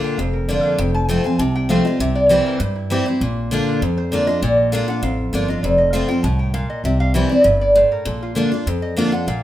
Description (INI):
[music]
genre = bluegrass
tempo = 198 BPM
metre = 4/4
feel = straight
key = Bb major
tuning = A4 = 436 Hz
[part]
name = lap resonator guitar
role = melody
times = 0.0-9.4 s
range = E4 to A5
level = -19 LUFS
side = equal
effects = none
[part]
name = picked steel-string acoustic guitar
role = accompaniment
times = 0.0-9.4 s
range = F2 to F4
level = -19 LUFS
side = left 1 dB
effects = none
[part]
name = upright bass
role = bass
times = 0.2-9.4 s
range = F1 to G2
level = -22 LUFS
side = equal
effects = none
[sound]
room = light reverb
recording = minimal, uncompressed stereo recording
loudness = -16 LUFS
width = side -13 dB against mid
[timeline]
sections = 0.0-9.4 A section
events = none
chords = 0.0 Bb; 0.8 F; 2.0 C; 3.2 Bb; 5.6 F; 6.8 C; 8.1 Bb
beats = 0.19 0.49 | 0.79 1.09 1.40 1.70 | 2.00 2.30 2.61 2.91 | 3.21 3.51 3.82 4.12 | 4.42 4.72 5.03 5.33 | 5.63 5.94 6.24 6.54 | 6.84 7.15 7.45 7.75 | 8.06 8.36 8.66 8.97 | 9.27